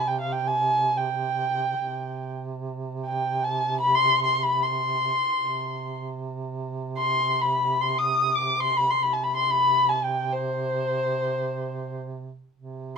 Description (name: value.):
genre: Persian modal ensemble.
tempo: free time.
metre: none.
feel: none.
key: C avaz esfahan.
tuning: A4 = 440 Hz.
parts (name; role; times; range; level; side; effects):
dark kamancheh; melody; 0.0-12.0 s; C5 to Eb6; -23 LUFS; left 1 dB; none.
mellow duduk; drone; 0.0-13.0 s; C3; -32 LUFS; right 4 dB; none.
room: moderate studio reverb, RT60 0.6 s.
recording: minimal, uncompressed stereo recording.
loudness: -23 LUFS.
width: side -6 dB against mid.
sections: 0.0-12.5 A section.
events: none.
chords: none.